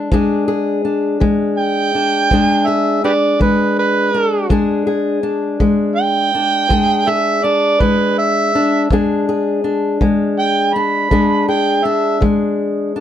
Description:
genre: acoustic country blues, solo or duo.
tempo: 54 BPM (dotted quarters).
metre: 12/8.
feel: straight.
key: E mixolydian.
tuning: A4 = 440 Hz.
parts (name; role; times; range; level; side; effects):
overdriven harmonica; melody; 0.0-12.2 s; G4 to B5; -15 LUFS; right 4 dB; none.
fingerpicked old ladder-braced acoustic guitar; accompaniment; 0.0-13.0 s; E2 to G#4; -16 LUFS; left 2 dB; none.
kick drum; drums; 0.1-12.4 s; none; -18 LUFS; equal; none.
room: light reverb.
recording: none.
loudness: -13 LUFS.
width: side -10 dB against mid.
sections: 0.0-13.0 A section.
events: none.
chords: 0.0 E7.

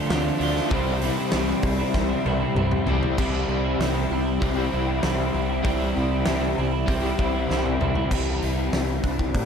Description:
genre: rock, shoegaze and dream pop.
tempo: 97 BPM.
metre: 4/4.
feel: straight.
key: C major.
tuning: A4 = 440 Hz.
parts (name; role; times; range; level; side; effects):
picked twelve-string acoustic guitar; arpeggios; 0.0-9.5 s; E3 to A4; -32 LUFS; right 9 dB; lush chorus, tape echo.
crunchy overdriven guitar; riff; 0.0-8.1 s; C3 to D4; -28 LUFS; left 2 dB; tremolo.
overdriven electric guitar; riff; 0.0-9.5 s; C3 to F4; -30 LUFS; right 8 dB; reverse reverb.
raw garage guitar; riff; 0.0-9.5 s; C3 to G4; -29 LUFS; left 10 dB; overdrive, analog chorus.
growling fingered electric bass; bass; 0.1-9.5 s; C2 to A2; -28 LUFS; equal; overdrive.
huge arena drum kit; drums; 0.1-9.5 s; crash cymbal, hi-hat, kick drum, snare drum, toms; -27 LUFS; equal; none.
room: light reverb, small room ambience.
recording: none.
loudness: -21 LUFS.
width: side -7 dB against mid.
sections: 0.0-3.2 A section; 3.2-8.1 B section; 8.1-9.5 C section.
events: drum fill 1.9-3.2, 7.5-8.1.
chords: 0.0 Dm7; 0.7 C; 8.1 Cadd9.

